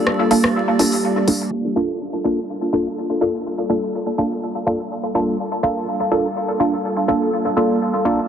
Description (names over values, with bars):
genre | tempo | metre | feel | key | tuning
dub techno | 124 BPM | 4/4 | swing 53% on 16ths | G minor | A4 = 440 Hz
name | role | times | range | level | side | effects
warbly tape-like pad | sustained chords | 0.0-8.3 s | G3 to D5 | -24 LUFS | right 2 dB | chorus, built-in reverb, phaser
filtered dub chord stab | stabs | 0.0-8.2 s | Bb3 to A4 | -18 LUFS | equal | chorus, phaser, dub echo
deep house drum kit | drums | 0.1-1.4 s | hi-hat, rim click | -23 LUFS | left 1 dB | low-pass filter on hats, soft clipping on snare, low-pass filter on snare, low-pass filter on room, dub echo
room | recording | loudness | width
wet huge ambient reverb, RT60 5.5 s | dense, heavily limited modern master, vinyl crackle, low-pass filter | -17 LUFS | side -8 dB against mid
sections
0.0-1.5 A section; 1.5-8.3 B section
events
filter sweep on synth stab 0.0-1.5; filter sweep on ambient pad 1.5-8.3; filter sweep 1.5-8.3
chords
0.0 Gm9